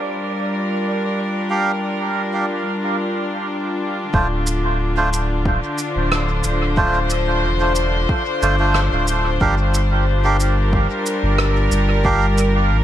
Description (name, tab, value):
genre	ambient dub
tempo	91 BPM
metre	4/4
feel	straight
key	D minor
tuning	A4 = 438 Hz
part	clear studio string section	sustained chords	0.0-12.8 s	D3 to C5	-21 LUFS	left 1 dB	none
part	wind-like tuned noise texture	texture	0.0-2.8 s	D5	-32 LUFS	right 3 dB	built-in reverb
part	melodica	stabs	1.5-12.3 s	A3 to F5	-23 LUFS	right 2 dB	dub echo
part	warm sub bass	bass	4.1-12.8 s	D1 to A1	-19 LUFS	equal	none
part	electronic kick drum	drums	4.1-12.2 s	none	-21 LUFS	equal	none
part	shaker and rim click	drums	4.5-12.5 s	none	-26 LUFS	right 2 dB	dub echo
room	light reverb, studio reverb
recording	echo-heavy mix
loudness	-16 LUFS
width	side -11 dB against mid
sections	0.0-4.1 A section; 4.1-12.8 B section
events	break 2.8-4.1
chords	0.0 Gm7; 4.1 Dm7; 9.4 Gm7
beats	0.18 0.84 | 1.50 2.16 2.82 3.48 | 4.14 4.80 5.46 6.11 | 6.77 7.43 8.09 8.75 | 9.41 10.07 10.73 11.39 | 12.05 12.71